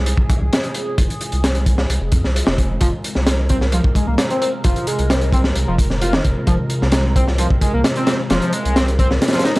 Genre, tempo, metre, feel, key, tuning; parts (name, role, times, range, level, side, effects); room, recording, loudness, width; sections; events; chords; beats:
breakbeat, breaks; 131 BPM; 4/4; straight; A4 = 440 Hz
phased analog pad; sustained chords; 0.0-9.6 s; C3 to Bb4; -25 LUFS; equal; phaser, chorus, vintage 12-bit sampler grit, sidechain pumping
saturated sub bass; bass; 0.0-9.2 s; F1 to F2; -19 LUFS; equal
crunchy breakbeat drum kit; drums; 0.1-9.6 s; hi-hat, kick drum, snare drum; -17 LUFS; equal
overdriven synth lead; riff; 2.8-9.5 s; Eb3 to F4; -22 LUFS; equal; tube saturation, analog chorus, tape echo
little or no reverb; dry, gritty hardware recording, vinyl crackle; -15 LUFS; side -21 dB against mid
0.0-9.6 A section
kick drops out 9.2-9.6
0.0 Fm
0.06 0.52 | 0.98 1.44 1.90 2.35 | 2.81 3.27 3.73 4.18 | 4.64 5.10 5.56 6.02 | 6.47 6.93 7.39 7.85 | 8.31 8.77 9.22